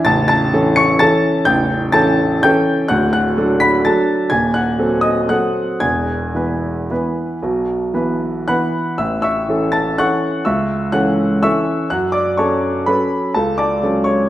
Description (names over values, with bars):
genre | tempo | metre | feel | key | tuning
classical, piano waltz | 109-134 BPM | 3/4 | rubato | A major | A4 = 440 Hz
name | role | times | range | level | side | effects
clear grand piano | solo | 0.0-14.3 s | A0 to C#7 | -14 LUFS | equal | none
room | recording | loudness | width
wet recital hall reverb, RT60 1.5 s | none | -14 LUFS | side -13 dB against mid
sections
0.0-9.0 A section; 9.0-14.3 B section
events
none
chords
0.1 A; 1.5 A7; 2.9 D; 4.3 D#dim7; 5.8 E; 9.0 A; 10.5 A/C#; 11.9 F#m